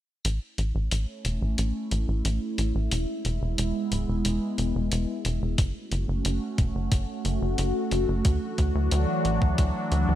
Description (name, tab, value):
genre	synthwave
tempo	90 BPM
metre	4/4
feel	straight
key	A major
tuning	A4 = 438 Hz
part	phased analog pad	sustained chords	1.1-10.2 s	E3 to F#4	-29 LUFS	equal	phaser, chorus, sidechain pumping
part	tight sequencer bass	bass	0.2-10.2 s	D1 to D2	-26 LUFS	equal	sidechain pumping
part	electronic hi-hat	drums	0.2-10.0 s	none	-34 LUFS	left 2 dB	none
part	electronic kick drum	drums	5.6-9.7 s	none	-24 LUFS	equal	none
room	light reverb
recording	bright 1980s-style digital production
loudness	-24 LUFS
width	side -12 dB against mid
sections	0.2-10.2 A section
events	filter sweep on analog synth bass 0.2-10.2; filter sweep on analog synth pad 0.2-10.2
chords	0.2 A; 2.9 E; 5.6 F#m; 8.2 Dadd9